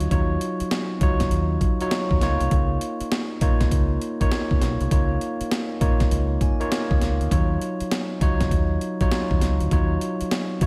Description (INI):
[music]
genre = R&B, new jack swing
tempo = 100 BPM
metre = 4/4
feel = swing 64% on 16ths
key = Eb minor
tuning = A4 = 440 Hz
[part]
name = bell-like tine electric piano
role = accompaniment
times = 0.0-10.7 s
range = Gb3 to Ab5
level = -28 LUFS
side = equal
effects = slapback echo
[part]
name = deep dub fingered electric bass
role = bass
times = 0.0-10.7 s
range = Bb1 to Eb2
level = -26 LUFS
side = equal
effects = none
[part]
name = breakbeat sampler-style drum kit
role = drums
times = 0.0-10.7 s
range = hi-hat, kick drum, snare drum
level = -25 LUFS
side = equal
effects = none
[sound]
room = light reverb, digital ambience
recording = none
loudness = -23 LUFS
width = mono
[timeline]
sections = 0.0-10.7 A section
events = tine electric piano fill 6.1-7.3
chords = 0.0 Ebm9; 2.2 Db69; 7.3 Ebm9